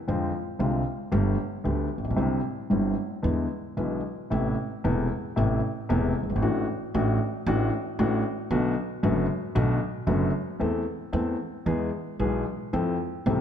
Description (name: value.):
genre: tango.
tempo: 114 BPM.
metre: 4/4.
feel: rubato.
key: A harmonic minor from 4.3 s.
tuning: A4 = 437 Hz.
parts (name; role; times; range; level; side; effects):
dark baby grand piano; accompaniment; 0.1-13.4 s; E1 to A4; -25 LUFS; left 1 dB; none.
upright bass; bass; 0.1-13.4 s; E1 to F2; -31 LUFS; right 3 dB; none.
room: moderate recital hall reverb, RT60 1.6 s.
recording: none.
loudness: -24 LUFS.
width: side -9 dB against mid.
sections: 0.0-4.3 A section; 4.3-13.4 B section.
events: none.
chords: 0.1 Fm6; 1.1 Gadd9; 2.2 Cadd9; 3.2 E7; 4.3 Amadd9; 6.4 Dadd9/A; 8.5 Bm7; 10.6 Am/E; 11.7 E; 12.7 Fmaj7.